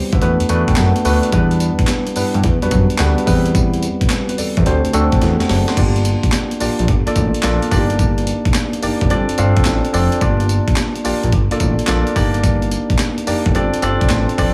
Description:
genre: R&B, new jack swing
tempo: 108 BPM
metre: 4/4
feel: swing 67% on 16ths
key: G minor from 5.8 s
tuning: A4 = 443 Hz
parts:
  - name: tine electric piano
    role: accompaniment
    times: 0.0-14.5 s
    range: G3 to C6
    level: -20 LUFS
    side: equal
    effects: none
  - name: fat analog bass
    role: bass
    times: 0.1-14.5 s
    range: F1 to G2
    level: -20 LUFS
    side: equal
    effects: none
  - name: breakbeat sampler-style drum kit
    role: drums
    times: 0.1-14.5 s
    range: crash cymbal, handclaps, hi-hat, kick drum, snare drum, tambourine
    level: -21 LUFS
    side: equal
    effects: overdrive
room: little or no reverb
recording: small room ambience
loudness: -16 LUFS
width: mono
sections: 0.0-5.8 A section; 5.8-14.5 A section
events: tine electric piano fill 0.2-1.3, 13.8-14.5; drum fill 5.2-5.8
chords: 0.2 Bm7/E; 1.3 Em7; 2.4 Gmaj7/E; 3.3 Cmaj7/E; 4.7 D7; 5.8 Gm7; 6.9 Bbmaj7/G; 7.7 Ebmaj7/G; 9.1 Dm7/G; 10.2 Gm7; 11.3 Bbmaj7/G; 12.2 Ebmaj7/G; 13.5 Dm7/G

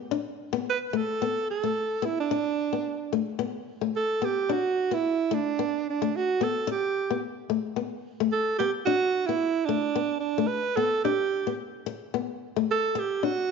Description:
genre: highlife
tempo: 110 BPM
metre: 4/4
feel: swing 54% on 16ths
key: unclear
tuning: A4 = 440 Hz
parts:
  - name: nylon-string guitar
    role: accompaniment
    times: 0.1-13.4 s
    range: A3 to D4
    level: -30 LUFS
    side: left 12 dB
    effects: none
  - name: clear alto saxophone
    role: melody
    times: 0.7-13.5 s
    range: D4 to B4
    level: -26 LUFS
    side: right 5 dB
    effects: none
room: wet echo chamber reverb, RT60 1.7 s, studio reverb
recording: 1960s-style stereo, nothing above 7.5 kHz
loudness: -25 LUFS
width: side -5 dB against mid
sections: 0.0-4.5 A section; 4.5-13.5 B section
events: none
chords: 0.0 Asus24

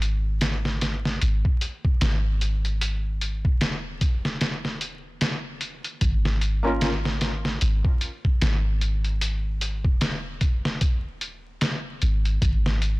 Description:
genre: trip hop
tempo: 75 BPM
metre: 4/4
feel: swing 58% on 16ths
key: unclear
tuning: A4 = 440 Hz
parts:
  - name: soft 808-style bass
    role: bass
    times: 0.0-13.0 s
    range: D#1 to G#1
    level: -24 LUFS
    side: equal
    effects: none
  - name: trip hop sampler-style drum kit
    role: drums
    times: 0.0-13.0 s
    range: hi-hat, kick drum, snare drum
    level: -24 LUFS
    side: equal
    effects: none
  - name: felt-muted upright piano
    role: accompaniment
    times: 6.6-6.9 s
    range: A#3 to A#4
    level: -28 LUFS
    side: equal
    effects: tremolo, tape echo
room: digital ambience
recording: blown-out, overdriven recording, vinyl crackle, overdrive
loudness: -22 LUFS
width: side -22 dB against mid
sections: 0.0-13.0 A section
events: none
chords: 0.0 G#5; 6.0 N.C.

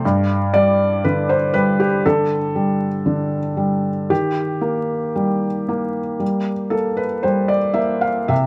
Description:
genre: neoclassical minimalist piano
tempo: 58 BPM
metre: 4/4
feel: rubato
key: unclear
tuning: A4 = 441 Hz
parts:
  - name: felt-muted upright piano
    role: solo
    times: 0.0-8.5 s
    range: G2 to F5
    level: -19 LUFS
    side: equal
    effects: none
room: light reverb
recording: dark, warm production, vinyl crackle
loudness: -19 LUFS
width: mono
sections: 0.0-8.5 A section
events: none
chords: 0.0 G5; 4.1 Eb

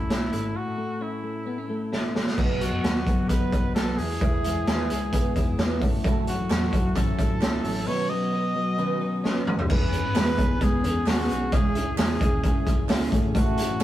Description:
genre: jangly indie pop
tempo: 131 BPM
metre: 4/4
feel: straight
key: E major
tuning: A4 = 440 Hz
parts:
  - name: clear trumpet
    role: melody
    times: 0.0-13.8 s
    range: E4 to D#5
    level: -31 LUFS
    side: equal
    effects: none
  - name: twelve-string electric guitar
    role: arpeggios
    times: 0.0-13.8 s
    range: A2 to G#4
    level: -29 LUFS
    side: left 3 dB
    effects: spring reverb
  - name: vintage muted fingered electric bass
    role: bass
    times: 0.0-13.8 s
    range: G#1 to G#2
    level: -32 LUFS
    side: equal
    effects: none
  - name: raw garage drum kit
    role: drums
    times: 0.1-13.8 s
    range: crash cymbal, hi-hat, kick drum, snare drum, toms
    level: -24 LUFS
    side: equal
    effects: none
  - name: picked twelve-string acoustic guitar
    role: accompaniment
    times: 2.4-13.8 s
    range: A2 to G#4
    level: -31 LUFS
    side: right 5 dB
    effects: none
  - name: reed electric piano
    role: accompaniment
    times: 2.4-13.8 s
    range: G#3 to C#5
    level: -39 LUFS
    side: equal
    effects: none
  - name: group handclap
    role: percussion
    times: 6.5-13.8 s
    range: none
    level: -42 LUFS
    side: right 4 dB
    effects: none
room: moderate stone room reverb, RT60 1.4 s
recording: rough rehearsal-room recording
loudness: -22 LUFS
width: side -13 dB against mid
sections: 0.0-2.4 A section; 2.4-9.7 B section; 9.7-13.8 C section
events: break 0.6-2.4; drum fill 1.9-2.4, 9.2-9.7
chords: 0.0 A; 2.4 B; 4.0 E; 5.8 A6; 7.9 Badd9; 9.7 E6; 11.5 C#m; 13.1 Amaj7

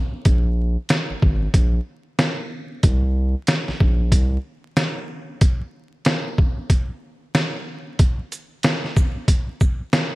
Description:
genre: hip hop, boom-bap hip-hop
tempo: 93 BPM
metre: 4/4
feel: swing 62% on 16ths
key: unclear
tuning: A4 = 441 Hz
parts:
  - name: saturated sub bass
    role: bass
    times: 0.3-4.4 s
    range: Ab1 to C2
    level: -20 LUFS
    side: equal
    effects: none
  - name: trip hop sampler-style drum kit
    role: drums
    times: 0.3-10.1 s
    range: hi-hat, kick drum, shaker, snare drum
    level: -18 LUFS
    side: equal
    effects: gated reverb
room: light reverb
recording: bright 1980s-style digital production, vinyl crackle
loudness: -18 LUFS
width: side -21 dB against mid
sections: 0.0-10.2 A section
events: none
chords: none

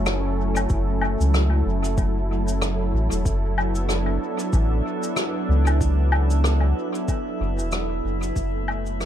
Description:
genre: ambient dub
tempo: 94 BPM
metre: 4/4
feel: swing 57% on 16ths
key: unclear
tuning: A4 = 440 Hz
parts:
  - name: warm analog pad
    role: sustained chords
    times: 0.0-9.1 s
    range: F#3 to A4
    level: -26 LUFS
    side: right 1 dB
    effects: chorus, vintage 12-bit sampler grit
  - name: soft dub sub bass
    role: bass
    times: 0.0-9.1 s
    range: E1 to C#2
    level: -22 LUFS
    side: equal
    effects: none
  - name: cabasa, rim click and woodblock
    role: drums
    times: 0.1-9.1 s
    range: none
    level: -28 LUFS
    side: left 2 dB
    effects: dub echo
  - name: electronic kick drum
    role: drums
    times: 0.7-8.5 s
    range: none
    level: -24 LUFS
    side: equal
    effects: overdrive
  - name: drifting glass-harmonics texture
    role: texture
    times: 3.7-9.1 s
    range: E4 to E5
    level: -32 LUFS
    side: right 2 dB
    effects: chorus, built-in reverb
room: small room ambience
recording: echo-heavy mix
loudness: -20 LUFS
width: side -10 dB against mid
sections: 0.0-9.1 A section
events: fade-out 6.7-9.1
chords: 0.0 F#m7; 3.3 E9sus4/F#; 8.4 F#m7

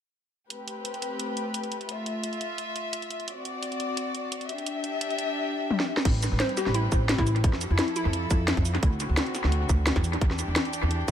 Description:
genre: liquid drum and bass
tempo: 173 BPM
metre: 4/4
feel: swing 53% on 16ths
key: A minor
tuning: A4 = 438 Hz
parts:
  - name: warm chamber string section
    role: sustained chords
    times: 0.5-11.1 s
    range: D3 to E5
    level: -32 LUFS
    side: left 2 dB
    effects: sidechain pumping
  - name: drum and bass drum kit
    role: drums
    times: 0.5-11.1 s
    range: crash cymbal, hi-hat, shaker, snare drum, toms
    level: -29 LUFS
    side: equal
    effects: small room ambience, dub echo
  - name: upright bass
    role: bass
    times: 6.1-11.1 s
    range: A1 to F2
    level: -26 LUFS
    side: equal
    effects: none
  - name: electronic kick drum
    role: drums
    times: 6.1-11.1 s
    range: none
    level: -24 LUFS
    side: equal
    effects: small room ambience
  - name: hollow square pluck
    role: melody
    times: 6.4-8.2 s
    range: E4 to C5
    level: -31 LUFS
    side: left 1 dB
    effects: chorus, dub echo
room: light reverb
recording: echo-heavy mix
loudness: -25 LUFS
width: side -10 dB against mid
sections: 0.5-6.1 A section; 6.1-11.1 B section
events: drum fill 5.7-6.1; drop 6.1-11.1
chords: 0.5 Am9; 1.9 Fmaj7; 3.3 D7; 4.5 Em7; 6.1 Am9; 7.4 Fmaj7; 8.8 D7; 10.0 Em7

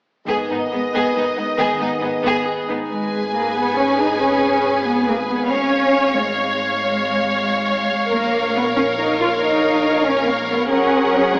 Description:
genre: cinematic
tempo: 92 BPM (dotted quarters)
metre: 12/8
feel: straight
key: G# dorian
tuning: A4 = 440 Hz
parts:
  - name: rich studio violin section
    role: melody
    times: 0.3-11.4 s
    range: D#5 to G#5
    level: -24 LUFS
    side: equal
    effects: none
  - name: bright symphonic violin section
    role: second line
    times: 0.3-11.4 s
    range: B3 to C#5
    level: -23 LUFS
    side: equal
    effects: none
  - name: bright symphonic viola section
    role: accompaniment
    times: 0.3-11.4 s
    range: B3 to C#5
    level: -22 LUFS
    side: equal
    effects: none
  - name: mellow French horn section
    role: sustained chords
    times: 0.3-2.6 s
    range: D#3 to B4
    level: -24 LUFS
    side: equal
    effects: none
  - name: concert harp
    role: arpeggios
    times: 0.3-6.4 s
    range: G#2 to B4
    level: -29 LUFS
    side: equal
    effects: none
  - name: bright symphonic double bass section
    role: bass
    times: 0.3-11.4 s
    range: G#1 to F#2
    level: -31 LUFS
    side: equal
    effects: none
  - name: dark symphonic cello section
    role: bass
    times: 0.3-11.4 s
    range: G#2 to E#4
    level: -20 LUFS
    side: equal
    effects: none
room: wet scoring stage reverb, RT60 2.1 s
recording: AM radio sound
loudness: -16 LUFS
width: side -31 dB against mid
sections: 0.3-2.9 A section; 2.9-11.4 B section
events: none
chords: 0.3 G#m; 5.5 C#/G#; 8.1 A#m; 10.7 F#add9

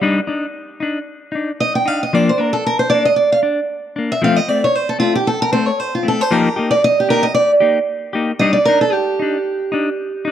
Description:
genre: highlife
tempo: 115 BPM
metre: 4/4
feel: swing 55% on 16ths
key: unclear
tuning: A4 = 439 Hz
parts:
  - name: clean electric guitar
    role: accompaniment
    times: 0.0-10.3 s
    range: F3 to G4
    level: -19 LUFS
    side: left 3 dB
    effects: spring reverb
  - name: picked steel-string acoustic guitar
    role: melody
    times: 1.6-10.3 s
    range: F4 to G5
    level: -15 LUFS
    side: right 1 dB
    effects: none
room: moderate studio ambience, RT60 0.5 s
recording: none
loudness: -14 LUFS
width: side -10 dB against mid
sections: 0.0-10.3 A section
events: steel-string acoustic guitar solo 0.0-10.3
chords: 0.0 Ebmaj7(no3); 2.1 Bb; 4.2 F (rootless); 6.3 Eb; 8.4 G5

